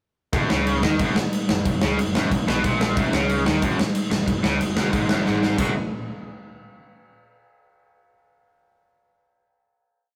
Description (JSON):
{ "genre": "punk rock", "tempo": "183 BPM", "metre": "4/4", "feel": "straight", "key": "F# major", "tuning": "A4 = 440 Hz", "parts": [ { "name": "distorted electric guitar", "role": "riff", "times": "0.3-5.7 s", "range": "F#2 to F#3", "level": "-26 LUFS", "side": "equal", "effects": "overdrive" }, { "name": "fuzz picked electric bass", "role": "bass", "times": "0.3-5.7 s", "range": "F#1 to D#2", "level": "-31 LUFS", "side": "equal", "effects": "overdrive" }, { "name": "big rock drum kit", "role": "drums", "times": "0.3-5.7 s", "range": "crash cymbal, kick drum, snare drum", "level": "-24 LUFS", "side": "equal", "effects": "none" } ], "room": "light reverb", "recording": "rough rehearsal-room recording, warm saturation", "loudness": "-22 LUFS", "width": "mono", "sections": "0.3-5.6 riff; 5.6-6.9 final chord", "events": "drum fill 5.3-5.6", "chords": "0.3 F#5" }